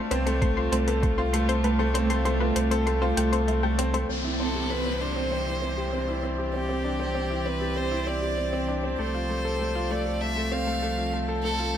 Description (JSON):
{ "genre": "piano and strings electronica", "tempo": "98 BPM", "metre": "4/4", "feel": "straight", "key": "C major", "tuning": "A4 = 440 Hz", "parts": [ { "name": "dark studio string section", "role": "sustained chords", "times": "0.0-11.8 s", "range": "E3 to D5", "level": "-32 LUFS", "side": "right 2 dB", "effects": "sidechain pumping" }, { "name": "analog pluck", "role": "arpeggios", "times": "0.0-4.0 s", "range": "B4 to C6", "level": "-32 LUFS", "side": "left 3 dB", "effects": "chorus, sidechain pumping, digital delay" }, { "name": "bright concert grand piano", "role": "riff", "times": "0.0-11.8 s", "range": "A3 to A4", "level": "-28 LUFS", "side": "left 2 dB", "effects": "low-pass filter, digital delay" }, { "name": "warm sub bass", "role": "bass", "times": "0.1-11.8 s", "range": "C2", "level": "-29 LUFS", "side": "equal", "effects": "sidechain pumping" }, { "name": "electronic hi-hat", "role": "drums", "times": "0.1-4.1 s", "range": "none", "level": "-35 LUFS", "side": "left 2 dB", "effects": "none" }, { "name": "electronic kick drum", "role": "drums", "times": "0.4-1.2 s", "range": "none", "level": "-26 LUFS", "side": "equal", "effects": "none" }, { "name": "downlifter", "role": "sound effects", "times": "4.1-9.0 s", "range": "none", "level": "-35 LUFS", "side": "right 1 dB", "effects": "none" }, { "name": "rich violin", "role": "melody", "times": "4.4-11.8 s", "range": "G4 to F5", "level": "-30 LUFS", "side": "equal", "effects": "digital delay" } ], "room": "light reverb, studio reverb", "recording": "none", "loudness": "-24 LUFS", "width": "side -10 dB against mid", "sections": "0.0-4.1 A section; 4.1-11.8 B section", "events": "kick drops out 1.6-4.1; filter sweep on grand piano 4.1-11.8", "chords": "0.0 F/C; 4.1 Cadd9; 9.0 F/C", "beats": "0.42 1.03 | 1.64 2.26 2.87 3.48 | 4.09 4.71 5.32 5.93 | 6.54 7.15 7.77 8.38 | 8.99 9.60 10.21 10.83 | 11.44" }